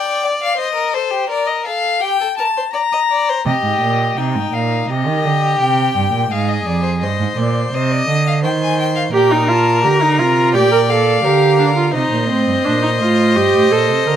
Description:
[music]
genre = classical, baroque-style fugue for string quartet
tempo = 85 BPM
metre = 4/4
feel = straight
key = C minor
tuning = A4 = 440 Hz
[part]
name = rich violin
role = melody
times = 0.0-14.2 s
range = C5 to Bb5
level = -19 LUFS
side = left 6 dB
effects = none
[part]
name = rich violin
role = second line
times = 0.0-14.2 s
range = Eb4 to Eb5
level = -20 LUFS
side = left 2 dB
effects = none
[part]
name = warm cello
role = bass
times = 3.5-14.2 s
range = F2 to Eb3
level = -18 LUFS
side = right 4 dB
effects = none
[part]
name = rich viola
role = accompaniment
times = 9.1-14.2 s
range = C4 to Bb4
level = -15 LUFS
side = right 3 dB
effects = none
[sound]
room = light reverb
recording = none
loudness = -13 LUFS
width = side -9 dB against mid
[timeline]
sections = 0.0-3.5 A section; 3.5-14.2 B section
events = none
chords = 0.0 G5; 0.6 Cm; 2.0 Gm; 3.5 Cm; 6.3 Fm; 7.7 Cm; 9.1 Gm/Bb; 11.9 Cm; 13.4 Gm

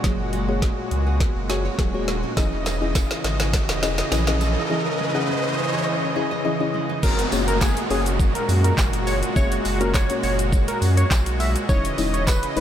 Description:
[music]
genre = dance-pop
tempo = 103 BPM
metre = 4/4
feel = straight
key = unclear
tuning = A4 = 440 Hz
[part]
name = soft round pluck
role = accompaniment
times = 0.0-12.6 s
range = G#3 to F#5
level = -29 LUFS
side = left 5 dB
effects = chorus, sidechain pumping
[part]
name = soft supersaw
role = sustained chords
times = 0.0-12.6 s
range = A#2 to D#5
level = -26 LUFS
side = equal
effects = sidechain pumping
[part]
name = nylon-string guitar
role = arpeggios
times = 0.0-7.0 s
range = E3 to D#5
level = -33 LUFS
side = right 6 dB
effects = wide subtle chorus, sidechain pumping, analog delay
[part]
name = round analog bass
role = bass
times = 0.0-12.6 s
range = D#1 to F#2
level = -24 LUFS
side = equal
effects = sidechain pumping
[part]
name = smooth R&B drum kit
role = drums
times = 0.0-12.6 s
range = crash cymbal, handclaps, hi-hat, kick drum, shaker, snare drum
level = -24 LUFS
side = equal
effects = none
[part]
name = riser and downlifter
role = sound effects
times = 0.7-11.7 s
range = none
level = -30 LUFS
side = equal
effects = none
[part]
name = tambourine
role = percussion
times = 2.4-12.6 s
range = none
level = -38 LUFS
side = right 7 dB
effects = none
[part]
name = octave-doubled lead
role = melody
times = 7.0-12.6 s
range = G#4 to E5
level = -27 LUFS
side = right 1 dB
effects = chorus, analog delay
[sound]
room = moderate huge ambient reverb, RT60 7.9 s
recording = dreamy mix soaked in reverb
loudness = -19 LUFS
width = side -10 dB against mid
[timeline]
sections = 0.0-7.0 A section; 7.0-12.6 B section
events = build-up 0.0-7.0; drum fill 0.0-4.7; riser 0.7-7.0; drop 7.0-12.6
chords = 0.0 F#add9; 2.4 C#madd9/E; 7.0 F#add9; 11.7 C#madd9/E

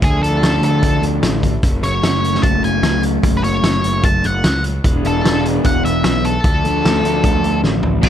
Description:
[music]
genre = indie rock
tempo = 150 BPM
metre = 4/4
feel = straight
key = unclear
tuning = A4 = 438 Hz
[part]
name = octave-fuzz lead guitar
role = melody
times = 0.0-7.6 s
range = G#4 to A5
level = -21 LUFS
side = equal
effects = distortion, analog delay
[part]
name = crunchy overdriven guitar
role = riff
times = 0.0-8.1 s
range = B2 to A4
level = -19 LUFS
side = left 1 dB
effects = none
[part]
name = fuzz picked electric bass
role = bass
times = 0.0-8.1 s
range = E1 to D2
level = -20 LUFS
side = equal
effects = overdrive
[part]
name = loose indie drum kit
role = drums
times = 0.0-8.1 s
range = crash cymbal, hi-hat, kick drum, snare drum, toms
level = -17 LUFS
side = equal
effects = none
[sound]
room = little or no reverb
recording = dark, warm production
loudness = -13 LUFS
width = side -10 dB against mid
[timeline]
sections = 0.0-8.0 A section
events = drum fill 7.6-8.0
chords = 0.0 Dm; 1.6 F#m; 4.8 E7sus4; 6.4 Dm

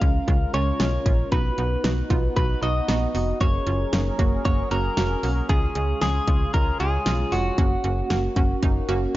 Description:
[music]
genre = synth-pop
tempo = 115 BPM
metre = 4/4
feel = straight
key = F# major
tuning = A4 = 439 Hz
[part]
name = direct-recorded clean electric guitar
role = melody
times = 0.0-9.1 s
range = F#4 to E#5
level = -28 LUFS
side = equal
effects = none
[part]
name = analog pluck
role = accompaniment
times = 0.0-9.1 s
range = G#3 to G#4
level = -29 LUFS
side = right 4 dB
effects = chorus
[part]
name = sweeping resonant pad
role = sustained chords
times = 0.0-9.2 s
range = C#3 to A#4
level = -32 LUFS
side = equal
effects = chorus, phaser, tremolo
[part]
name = slap-like FM bass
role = bass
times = 0.0-9.1 s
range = E#1 to C#2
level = -25 LUFS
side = equal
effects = none
[part]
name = pop drum kit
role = drums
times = 0.0-9.0 s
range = hi-hat, kick drum, snare drum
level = -23 LUFS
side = equal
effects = none
[sound]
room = light reverb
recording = nothing above 7.5 kHz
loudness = -20 LUFS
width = side -16 dB against mid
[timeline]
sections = 0.0-9.2 A section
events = none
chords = 0.0 C#; 1.3 B; 3.4 F#add9; 5.5 C#; 7.6 F#

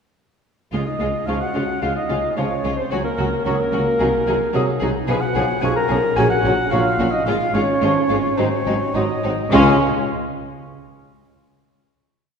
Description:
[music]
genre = cinematic, playful, whimsical film cue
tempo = 109 BPM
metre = 4/4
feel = uneven beats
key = Db major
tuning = A4 = 440 Hz
[part]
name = rich studio violin section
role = melody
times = 0.7-9.8 s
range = Db4 to Ab4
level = -27 LUFS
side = left 3 dB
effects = none
[part]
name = clear clarinet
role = second line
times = 0.7-9.8 s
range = F4 to Bb5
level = -26 LUFS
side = equal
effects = none
[part]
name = mellow cor anglais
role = second line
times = 0.7-9.8 s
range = Ab4 to Ab5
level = -26 LUFS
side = right 1 dB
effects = none
[part]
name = warm studio violin section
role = second line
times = 0.7-9.8 s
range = C4 to Eb4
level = -29 LUFS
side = left 3 dB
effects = none
[part]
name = warm studio viola section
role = accompaniment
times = 0.7-9.8 s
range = F3 to Ab3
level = -26 LUFS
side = right 1 dB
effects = none
[part]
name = dark French horn section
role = sustained chords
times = 0.7-9.8 s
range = Ab3 to Bb4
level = -24 LUFS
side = left 2 dB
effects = none
[part]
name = dark tuba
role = bass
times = 0.7-9.8 s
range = Ab1 to Db2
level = -28 LUFS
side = right 2 dB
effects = none
[part]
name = warm studio cello section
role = bass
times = 0.7-9.8 s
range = Ab2 to Db3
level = -27 LUFS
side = right 2 dB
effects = none
[part]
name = warm studio double bass section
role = bass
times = 0.7-9.8 s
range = Ab1 to Db2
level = -28 LUFS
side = right 2 dB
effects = none
[part]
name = mellow concert flute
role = second line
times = 1.3-9.8 s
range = C6 to Eb6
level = -31 LUFS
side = right 1 dB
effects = none
[part]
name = clear bassoon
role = accompaniment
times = 1.3-9.8 s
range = F3 to Ab3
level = -29 LUFS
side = right 2 dB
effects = none
[sound]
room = wet scoring stage reverb, RT60 2.0 s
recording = heard from further back in the room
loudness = -17 LUFS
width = side -6 dB against mid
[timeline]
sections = 0.7-9.5 A section; 9.5-11.8 final chord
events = none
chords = 0.7 Db; 2.9 Gb/Db; 4.0 Ab7/C; 5.1 Db7/Cb; 6.2 Gb/Bb; 7.3 Db/Ab; 8.4 Ab7; 9.5 Db5

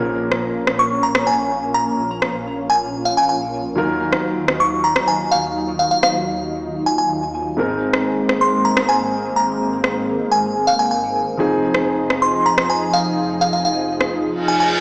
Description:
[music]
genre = EDM, festival progressive house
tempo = 126 BPM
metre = 4/4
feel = straight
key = Bb minor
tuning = A4 = 442 Hz
[part]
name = warm grand piano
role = accompaniment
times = 0.0-14.8 s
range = Ab2 to Bb4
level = -23 LUFS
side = equal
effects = dub echo
[part]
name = lush unison pad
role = sustained chords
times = 0.0-14.8 s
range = F3 to Ab4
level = -23 LUFS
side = equal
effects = chorus, phaser
[part]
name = detuned saw bass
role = bass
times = 0.0-14.8 s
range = F1 to Eb2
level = -31 LUFS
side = equal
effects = none
[part]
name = electronic rim click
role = drums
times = 0.3-14.1 s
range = none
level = -20 LUFS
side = equal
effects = overdrive, small room ambience
[part]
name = glassy synth bell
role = melody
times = 0.8-14.7 s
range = F5 to Db6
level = -18 LUFS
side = equal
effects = chorus, dub echo
[part]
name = reverse cymbal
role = sound effects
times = 14.4-14.8 s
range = none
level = -20 LUFS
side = right 1 dB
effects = none
[sound]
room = moderate lush hall reverb, RT60 2.2 s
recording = played on a big sound system in a bare room, large studio reverb, small speaker sound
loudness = -16 LUFS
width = side -26 dB against mid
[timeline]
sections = 0.0-14.8 A section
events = filter sweep on analog synth pad 0.0-14.8; reverse cymbal 14.4-14.8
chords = 0.0 Bbm; 3.8 Ebmadd9; 7.6 Abadd9; 11.4 Fm7

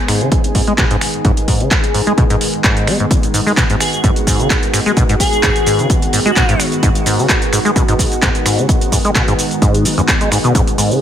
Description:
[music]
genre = acid house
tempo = 129 BPM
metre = 4/4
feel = swing 54% on 16ths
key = G# minor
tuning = A4 = 440 Hz
[part]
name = lush unison pad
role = sustained chords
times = 0.0-11.0 s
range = D#3 to G#4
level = -20 LUFS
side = equal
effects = chorus, phaser, sidechain pumping
[part]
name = acid bass, saw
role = riff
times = 0.1-11.0 s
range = F#2 to B3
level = -17 LUFS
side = equal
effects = tube saturation, analog chorus, sidechain pumping, tape echo
[part]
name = electro analog drum machine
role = drums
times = 0.1-11.0 s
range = finger snaps, handclaps, hi-hat, shaker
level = -18 LUFS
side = right 1 dB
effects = none
[part]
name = electronic kick drum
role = drums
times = 0.3-10.6 s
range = none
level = -15 LUFS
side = equal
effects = none
[part]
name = airy dreamy lead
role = melody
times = 3.8-6.6 s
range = F#4 to G#4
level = -20 LUFS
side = equal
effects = chorus, tape echo
[sound]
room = light reverb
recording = none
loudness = -11 LUFS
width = side -10 dB against mid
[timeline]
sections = 0.0-11.0 A section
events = none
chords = 0.0 G#m

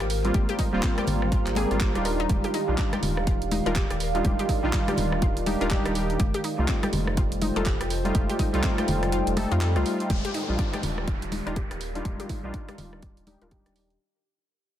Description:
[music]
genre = deep house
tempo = 123 BPM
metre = 4/4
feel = swing 60% on 16ths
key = Eb major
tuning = A4 = 440 Hz
[part]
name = deep dark ambient pad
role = sustained chords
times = 0.0-14.0 s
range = G4 to G5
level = -36 LUFS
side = right 2 dB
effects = chorus, built-in reverb, vintage 12-bit sampler grit, sidechain pumping
[part]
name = analog pluck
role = arpeggios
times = 0.0-13.7 s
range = C4 to Bb4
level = -35 LUFS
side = left 3 dB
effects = chorus, sidechain pumping, tape echo
[part]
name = round analog bass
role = bass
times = 0.0-14.0 s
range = Eb1 to F2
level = -29 LUFS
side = equal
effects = sidechain pumping
[part]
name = house drum kit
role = drums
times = 0.0-14.0 s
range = handclaps, hi-hat, rim click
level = -34 LUFS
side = right 1 dB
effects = soft clipping on snare
[part]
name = warbly tape-like pad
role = texture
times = 0.0-14.0 s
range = Eb3 to Bb5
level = -34 LUFS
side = right 1 dB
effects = chorus, built-in reverb, sidechain pumping
[part]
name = warm analog keys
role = stabs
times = 0.2-14.0 s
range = G3 to A4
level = -29 LUFS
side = equal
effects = chorus, sidechain pumping, low-pass filter, tape echo
[part]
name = electronic kick drum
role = drums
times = 0.3-13.6 s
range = none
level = -26 LUFS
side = equal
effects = none
[part]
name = congas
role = percussion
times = 0.3-13.4 s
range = none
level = -33 LUFS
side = left 3 dB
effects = none
[part]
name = downlifter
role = sound effects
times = 10.1-14.0 s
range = none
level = -37 LUFS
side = equal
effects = none
[sound]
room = light reverb, digital ambience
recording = dense, heavily limited modern master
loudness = -23 LUFS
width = side -11 dB against mid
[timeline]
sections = 0.0-10.1 A section; 10.1-14.0 B section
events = drop 0.0-10.1; kick drops out 9.1-10.1; fade-out on ambient pad 10.1-14.0; fade-out 10.1-14.0; filter sweep on synth keys 10.1-14.0; filter sweep on synth arpeggio sound 10.1-14.0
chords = 0.0 Ebmaj9; 6.2 F9; 10.1 Ebmaj9

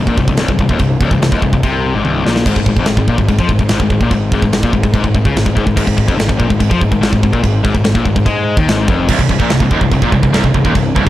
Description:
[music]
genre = heavy metal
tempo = 145 BPM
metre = 4/4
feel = straight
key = unclear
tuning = A4 = 440 Hz
[part]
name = heavy high-gain guitar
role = riff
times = 0.0-11.1 s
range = C2 to Ab3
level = -14 LUFS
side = left 3 dB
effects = distortion
[part]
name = fuzz picked electric bass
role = bass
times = 0.0-11.1 s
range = C1 to Ab2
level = -18 LUFS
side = right 1 dB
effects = overdrive
[part]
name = tight metal drum kit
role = drums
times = 0.1-11.1 s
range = china cymbal, crash cymbal, kick drum, snare drum, toms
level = -16 LUFS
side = right 1 dB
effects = none
[part]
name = scooped high-gain guitar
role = riff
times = 9.1-11.1 s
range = C2 to Bb2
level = -18 LUFS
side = right 10 dB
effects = distortion
[sound]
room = studio reverb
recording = dark, warm production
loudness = -11 LUFS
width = side -14 dB against mid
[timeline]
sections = 0.0-11.1 A section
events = drum fill 2.0-2.5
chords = 0.0 Cm; 2.5 Ab5; 9.1 Cm

